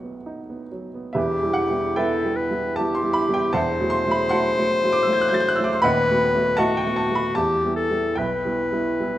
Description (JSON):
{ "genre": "classical, romantic duo for clarinet and grand piano", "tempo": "77 BPM", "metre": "3/4", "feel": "uneven beats, rubato", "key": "E minor", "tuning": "A4 = 441 Hz", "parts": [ { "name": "warm baby grand piano", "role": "accompaniment", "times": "0.0-9.2 s", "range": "D#1 to A6", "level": "-22 LUFS", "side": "right 2 dB", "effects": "none" }, { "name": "bright clarinet", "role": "melody", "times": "1.2-9.2 s", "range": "F#4 to C5", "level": "-22 LUFS", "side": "left 2 dB", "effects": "none" } ], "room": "moderate recital hall reverb, RT60 1.4 s", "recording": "none", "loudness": "-19 LUFS", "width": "side -13 dB against mid", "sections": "0.0-1.2 A section; 1.2-9.2 B section", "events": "none", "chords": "0.0 B; 1.2 Em; 3.5 F#m7b5/E; 5.8 B7/D#; 7.4 Em; 8.2 Em/B" }